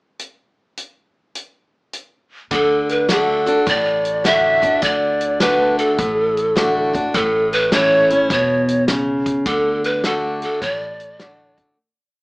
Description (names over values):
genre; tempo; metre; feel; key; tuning
honky-tonk and classic country; 104 BPM; 4/4; swing 66% on 8ths; D major; A4 = 440 Hz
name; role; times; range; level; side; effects
natural country drum kit; drums; 0.2-11.7 s; hi-hat, kick drum, snare drum; -23 LUFS; equal; none
breathy mellow polished pan flute; melody; 2.5-11.6 s; A4 to E5; -17 LUFS; equal; none
picked steel-string acoustic guitar; accompaniment; 2.5-11.8 s; A2 to F#4; -20 LUFS; equal; none
upright bass; bass; 2.5-11.6 s; E1 to D2; -31 LUFS; equal; none
room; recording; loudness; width
moderate studio ambience, RT60 0.5 s; small speaker sound; -15 LUFS; side -29 dB against mid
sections
0.2-2.5 pickup bar; 2.5-11.8 A section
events
fade-out 9.5-11.8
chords
0.2 N.C.; 2.5 D; 7.1 A; 9.5 D